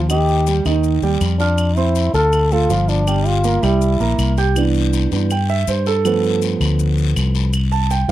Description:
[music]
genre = Afro-Cuban jazz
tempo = 162 BPM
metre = 4/4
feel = straight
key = C major from 4.6 s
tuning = A4 = 440 Hz
[part]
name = dark concert grand piano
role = accompaniment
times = 0.0-8.1 s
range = Eb3 to G6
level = -20 LUFS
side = right 7 dB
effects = none
[part]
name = fingered electric bass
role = bass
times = 0.0-8.1 s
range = G1 to G2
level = -17 LUFS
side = left 1 dB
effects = none
[part]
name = trombone with cup mute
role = melody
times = 0.1-4.4 s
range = D4 to A4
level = -19 LUFS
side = left 1 dB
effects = none
[part]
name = claves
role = percussion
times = 0.1-7.7 s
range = none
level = -29 LUFS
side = right 1 dB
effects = none
[part]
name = guiro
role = percussion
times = 0.1-8.1 s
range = none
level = -31 LUFS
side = left 16 dB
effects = none
[part]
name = maracas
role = percussion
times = 0.1-8.1 s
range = none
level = -33 LUFS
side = left 22 dB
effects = none
[sound]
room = little or no reverb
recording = dry, close 1970s-style studio recording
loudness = -14 LUFS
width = side -14 dB against mid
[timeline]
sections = 0.0-4.6 A section; 4.6-8.1 B section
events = grand piano solo 4.6-8.1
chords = 0.1 Ebadd9; 1.6 F5; 2.3 Dm; 3.1 Gm7; 3.8 C7; 4.6 Cmaj7; 6.0 G7; 7.5 C5

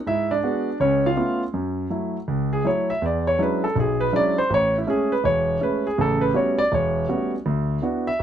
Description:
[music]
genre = solo jazz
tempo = 162 BPM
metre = 4/4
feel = swing 65% on 8ths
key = F# minor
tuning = A4 = 440 Hz
[part]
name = warm concert grand piano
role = solo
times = 0.1-8.2 s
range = E1 to E#5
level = -20 LUFS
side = right 1 dB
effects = none
[sound]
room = light reverb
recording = close, detailed microphones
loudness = -20 LUFS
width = side -9 dB against mid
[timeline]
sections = 0.0-1.5 A section; 1.5-8.2 B section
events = grand piano solo 1.5-8.2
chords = 0.1 G#m7b5; 0.8 C#7b13; 1.5 F#m7; 3.0 E13; 4.5 Amaj7; 6.0 A13; 7.5 D69

